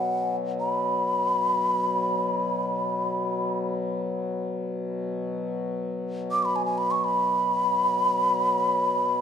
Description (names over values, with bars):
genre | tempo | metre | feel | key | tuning
world meditative, free-time meditation music | free time | none | none | unclear | A4 = 439 Hz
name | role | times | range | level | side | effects
breathy mellow alto ocarina | melody | 0.0-9.2 s | F#5 to D6 | -24 LUFS | equal | ping-pong delay
pedal harmonium | drone | 0.0-9.2 s | B2 to F#3 | -29 LUFS | left 3 dB | none
room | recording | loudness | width
moderate concert hall reverb, RT60 2.1 s | dark, warm production | -23 LUFS | side -8 dB against mid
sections
0.0-9.2 A section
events
none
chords
none